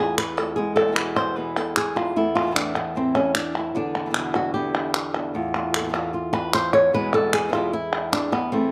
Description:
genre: flamenco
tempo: 151 BPM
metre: 4/4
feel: straight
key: E phrygian dominant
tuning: A4 = 440 Hz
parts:
  - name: flamenco guitar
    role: melody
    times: 0.0-8.7 s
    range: E2 to C#5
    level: -25 LUFS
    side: equal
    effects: none
  - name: flamenco guitar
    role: stabs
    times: 0.0-8.7 s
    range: E2 to F4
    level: -35 LUFS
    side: equal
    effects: slapback echo
  - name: palmas hand claps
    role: percussion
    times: 0.2-8.5 s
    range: none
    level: -28 LUFS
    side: equal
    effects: none
room: light reverb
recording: recorded outdoors, with no room sound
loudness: -23 LUFS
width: mono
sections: 0.0-8.7 A section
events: nylon-string guitar solo 0.0-8.7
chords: 0.0 F/E; 0.6 E; 2.2 Am/E; 3.8 G/E; 5.3 F/E; 6.9 E

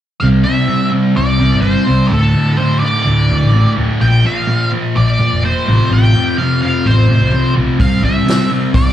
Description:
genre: blues rock power trio and southern rock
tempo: 127 BPM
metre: 4/4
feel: straight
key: unclear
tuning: A4 = 438 Hz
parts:
  - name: octave-fuzz lead guitar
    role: melody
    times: 0.2-8.9 s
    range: A4 to G5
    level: -18 LUFS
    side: right 1 dB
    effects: wah, distortion, plate reverb, slapback echo
  - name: sludgy distorted guitar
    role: riff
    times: 0.2-8.9 s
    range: D2 to C4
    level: -14 LUFS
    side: equal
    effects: overdrive
  - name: hollow-body short-scale picked electric bass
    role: bass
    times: 0.2-8.9 s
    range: D1 to Bb2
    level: -13 LUFS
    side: equal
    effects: none
  - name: vintage drum kit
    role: drums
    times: 7.8-8.9 s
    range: hi-hat, kick drum, snare drum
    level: -15 LUFS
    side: equal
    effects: none
room: light reverb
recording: live gig heard through the venue's PA, club reverb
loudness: -11 LUFS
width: side -11 dB against mid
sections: 0.2-8.9 A section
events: none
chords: 0.2 C; 2.1 D5; 4.0 Bb; 5.7 F/A; 7.8 C

